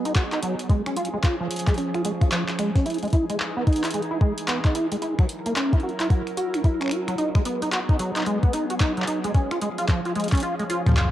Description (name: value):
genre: IDM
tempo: 111 BPM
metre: 4/4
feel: swing 62% on 16ths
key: unclear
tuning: A4 = 440 Hz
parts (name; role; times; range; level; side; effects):
- warbly tape-like pad; sustained chords; 0.0-11.1 s; E3 to A#4; -31 LUFS; equal; chorus, built-in reverb, vintage 12-bit sampler grit, cassette tape
- deep acid bass; arpeggios; 0.0-11.1 s; E#3 to F#4; -25 LUFS; right 1 dB; ensemble chorus, cassette tape, analog delay
- booming analog drum machine; drums; 0.1-11.1 s; finger snaps, handclaps, hi-hat; -30 LUFS; equal; cassette tape, analog delay
- electronic kick drum; drums; 0.2-11.1 s; none; -19 LUFS; equal; overdrive, cassette tape
room: light reverb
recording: home recording on cassette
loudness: -21 LUFS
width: side -13 dB against mid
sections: 0.0-11.1 A section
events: none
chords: 0.0 G#m7; 0.7 C#; 2.9 Emaj7; 5.0 F#7; 7.2 G#m7; 9.3 C#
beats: 0.16 | 0.70 1.24 1.78 2.32 | 2.86 3.40 3.94 4.48 | 5.02 5.56 6.10 6.64 | 7.18 7.72 8.26 8.80 | 9.35 9.88 10.43 10.97